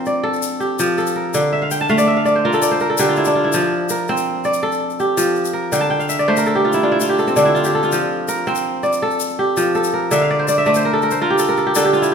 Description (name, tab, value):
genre	west african traditional, West African string and xylophone music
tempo	110 BPM (dotted quarters)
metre	12/8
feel	straight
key	F major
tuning	A4 = 440 Hz
part	kora	arpeggios	0.0-12.1 s	D3 to A5	-15 LUFS	equal	none
part	tube shaker	percussion	0.1-12.1 s	none	-28 LUFS	left 10 dB	none
room	moderate recital hall reverb, RT60 1.7 s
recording	minimal, uncompressed stereo recording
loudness	-15 LUFS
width	side -6 dB against mid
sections	0.0-12.1 A section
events	kora fill 1.5-3.5, 5.7-7.9, 10.1-12.1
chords	0.0 F; 1.3 Dm; 3.5 F; 5.7 Dm; 7.9 F; 10.1 Dm